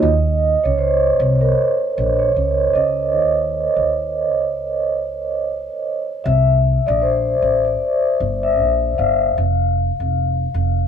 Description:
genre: lo-fi hip hop.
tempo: 77 BPM.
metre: 4/4.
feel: swing 60% on 16ths.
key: unclear.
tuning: A4 = 440 Hz.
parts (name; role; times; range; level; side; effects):
vibraphone with soft mallets; accompaniment; 0.0-10.9 s; Bb4 to F5; -17 LUFS; equal; low-pass filter, plate reverb.
upright bass; bass; 0.0-10.9 s; F1 to Eb2; -20 LUFS; equal; none.
room: moderate small room reverb, RT60 0.5 s.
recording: none.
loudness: -16 LUFS.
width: side -8 dB against mid.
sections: 0.0-10.9 A section.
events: vibraphone solo 0.0-10.9.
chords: 0.0 Eb5; 6.2 C5; 9.4 N.C..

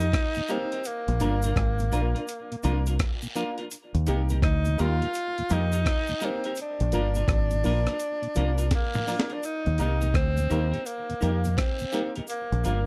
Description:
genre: roots reggae.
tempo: 84 BPM.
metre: 4/4.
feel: swing 63% on 16ths.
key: Eb major.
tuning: A4 = 445 Hz.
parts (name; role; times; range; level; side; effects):
breathy tenor saxophone; melody; 0.0-12.9 s; Bb3 to F4; -33 LUFS; equal; dub echo.
semi-hollow electric guitar; accompaniment; 0.0-12.8 s; D4 to Bb4; -39 LUFS; equal; dub echo.
deep dub fingered electric bass; bass; 0.0-12.9 s; G1 to F2; -27 LUFS; equal; none.
breakbeat sampler-style drum kit; drums; 0.0-12.9 s; hi-hat, kick drum, rim click, snare drum, toms; -30 LUFS; equal; none.
guiro and cabasa; percussion; 0.1-12.9 s; none; -44 LUFS; equal; none.
mellow tonewheel organ; accompaniment; 0.4-12.7 s; Eb2 to Eb4; -38 LUFS; equal; overdrive, chorus vibrato, slow rotary speaker, dub echo.
bright upright piano; stabs; 0.5-12.8 s; Bb3 to Bb4; -36 LUFS; equal; none.
room: little or no reverb.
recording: dry, close 1970s-style studio recording.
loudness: -27 LUFS.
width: mono.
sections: 0.0-9.4 A section; 9.4-12.9 B section.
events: drum fill 8.7-9.4.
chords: 0.0 Eb; 0.8 Bb; 3.7 Eb; 6.6 Bb; 9.4 Eb; 12.3 Bb.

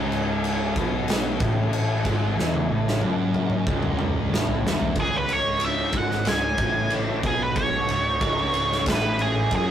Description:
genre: stoner and doom metal.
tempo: 92 BPM.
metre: 4/4.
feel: straight.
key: C# minor.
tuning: A4 = 440 Hz.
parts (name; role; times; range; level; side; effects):
organ-like drone; sustained chords; 1.0-9.7 s; C#3 to C#4; -39 LUFS; right 2 dB; none.
raw garage guitar; riff; 0.0-9.7 s; C#2 to B2; -32 LUFS; equal; overdrive.
thick fuzz guitar; riff; 0.0-9.7 s; C#2 to B2; -29 LUFS; left 4 dB; distortion.
thick fuzz guitar; riff; 0.0-9.7 s; C#2 to B2; -32 LUFS; right 4 dB; distortion.
fuzz picked electric bass; bass; 0.0-9.7 s; C#1 to B1; -31 LUFS; equal; overdrive.
oversized low-tuned drum kit; drums; 0.1-9.7 s; crash cymbal, kick drum, ride cymbal, snare drum, toms; -25 LUFS; equal; none.
octave-fuzz lead guitar; melody; 5.0-9.7 s; G#4 to G#5; -24 LUFS; right 2 dB; wah, distortion.
room: moderate studio reverb, RT60 0.6 s.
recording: rough rehearsal-room recording, warm saturation.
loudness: -21 LUFS.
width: side -10 dB against mid.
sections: 0.0-5.0 A section; 5.0-9.7 B section.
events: drum fill 2.4-5.0; lead electric guitar solo 5.0-9.7.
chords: 0.0 C#m; 5.0 C#5.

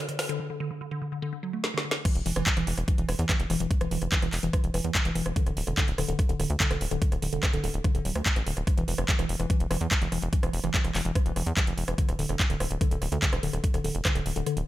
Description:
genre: psychedelic trance.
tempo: 145 BPM.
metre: 4/4.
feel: straight.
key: unclear.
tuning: A4 = 440 Hz.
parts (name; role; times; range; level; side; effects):
woody wave-folded pluck; riff; 0.0-14.6 s; D3 to A3; -32 LUFS; moving between left 3 dB and right 4 dB; chorus, auto-pan, sidechain pumping, digital delay.
garage drum kit; drums; 0.1-14.7 s; crash cymbal, handclaps, hi-hat, rim click, snare drum; -30 LUFS; right 1 dB; overdrive, studio reverb.
electronic kick drum; drums; 2.1-14.1 s; none; -26 LUFS; equal; overdrive, studio reverb.
tight sequencer bass; bass; 2.2-14.6 s; D1 to E2; -30 LUFS; equal; none.
room: little or no reverb.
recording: none.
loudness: -25 LUFS.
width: side -15 dB against mid.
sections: 0.0-2.1 A section; 2.1-14.7 B section.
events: build-up 0.0-2.1; drum fill 0.0-0.4, 1.6-2.1; filter sweep on synth arpeggio sound 0.0-2.1; break 0.4-2.1; drop 2.1-14.7; kick drops out 14.5.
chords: 0.0 D5; 2.1 N.C.; 5.4 D5; 8.7 N.C.; 12.0 D5.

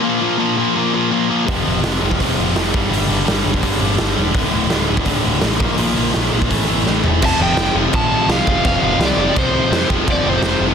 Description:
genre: punk rock.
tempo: 167 BPM.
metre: 4/4.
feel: straight.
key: unclear.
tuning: A4 = 440 Hz.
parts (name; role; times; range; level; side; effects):
distorted electric guitar; riff; 0.0-10.7 s; D2 to Bb3; -20 LUFS; left 15 dB; distortion.
tight distorted guitar; riff; 0.0-10.7 s; D2 to Bb3; -21 LUFS; right 17 dB; distortion.
growling picked electric bass; bass; 1.5-10.7 s; D1 to F2; -22 LUFS; right 1 dB; overdrive.
raw garage drum kit; drums; 1.5-10.5 s; crash cymbal, hi-hat, kick drum, snare drum, toms; -19 LUFS; right 1 dB; none.
tight distorted guitar; riff; 7.2-10.7 s; F2 to F3; -25 LUFS; equal; none.
overdriven electric guitar; melody; 7.3-10.6 s; C5 to A5; -20 LUFS; right 1 dB; none.
room: little or no reverb.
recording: dense, heavily limited modern master.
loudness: -14 LUFS.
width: side -7 dB against mid.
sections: 0.0-7.2 A section; 7.2-10.7 B section.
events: drum fill 6.9-7.2.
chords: 0.0 Bb5; 1.5 F5; 2.7 G5; 4.3 D5; 5.6 Bb5; 6.5 A5; 7.2 F5.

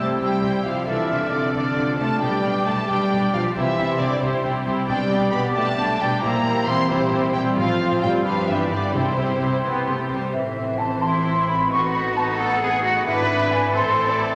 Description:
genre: classical, dramatic, fast romantic movement for symphony orchestra.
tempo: 89 BPM (dotted quarters).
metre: 6/8.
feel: straight.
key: C major, A minor from 10.3 s.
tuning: A4 = 441 Hz.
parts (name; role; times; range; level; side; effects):
warm symphonic violin section; melody; 0.0-14.3 s; B4 to C6; -30 LUFS; equal; none.
hollow small flute group; second line; 0.0-14.2 s; E5 to F6; -28 LUFS; equal; none.
warm clarinet; second line; 0.0-10.1 s; D4 to A4; -36 LUFS; equal; none.
warm symphonic violin section; second line; 0.0-14.3 s; C4 to D5; -31 LUFS; equal; none.
clear symphonic viola section; accompaniment; 0.0-14.3 s; E3 to F4; -31 LUFS; equal; none.
warm French horn section; sustained chords; 0.0-9.6 s; C3 to C4; -27 LUFS; equal; none.
concert harp; arpeggios; 0.0-14.3 s; G2 to C5; -31 LUFS; equal; none.
clear symphonic cello section; bass; 0.0-14.3 s; G2 to B4; -31 LUFS; equal; none.
dark symphonic double bass section; bass; 0.0-14.3 s; G1 to C2; -34 LUFS; equal; none.
timpani; percussion; 0.0-0.2, 8.9-9.6 s; C3; -36 LUFS; equal; none.
room: wet scoring stage reverb, RT60 2.0 s.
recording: none.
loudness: -21 LUFS.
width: mono.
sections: 0.0-10.3 A section; 10.3-14.3 B section.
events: none.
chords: 0.0 C; 0.9 Dm7/C; 2.2 G/B; 3.6 C; 4.9 G/B; 6.2 C7/Bb; 7.6 F/A; 8.3 G7; 8.9 C; 10.3 Am; 11.7 B7/A; 13.1 E7/G#; 13.7 Am.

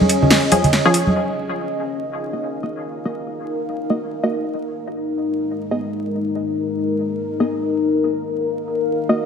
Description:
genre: deep dubstep.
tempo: 142 BPM.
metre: 4/4.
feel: swing 58% on 16ths, half-time.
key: Eb minor.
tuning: A4 = 440 Hz.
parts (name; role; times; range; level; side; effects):
deep dark ambient pad; sustained chords; 0.0-9.3 s; Ab3 to F5; -21 LUFS; left 2 dB; chorus, built-in reverb.
congas and bongos; percussion; 0.0-1.1 s; none; -19 LUFS; right 1 dB; none.
deep house drum kit; drums; 0.1-1.0 s; hi-hat, ride cymbal, snare drum; -18 LUFS; equal; overdrive, low-pass filter on cymbals, low-pass filter on hats, low-pass filter on snare.
filtered dub chord stab; stabs; 0.5-9.3 s; F3 to Eb5; -22 LUFS; left 1 dB; chorus, dub echo.
room: wet lush hall reverb, RT60 1.9 s.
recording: vinyl crackle.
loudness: -18 LUFS.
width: side -7 dB against mid.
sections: 0.0-1.2 A section; 1.2-9.3 B section.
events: drop 0.0-1.2; filter sweep on synth stab 1.2-9.3.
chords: 0.0 Db; 1.2 Ebm; 4.5 Abm; 7.9 Ebm.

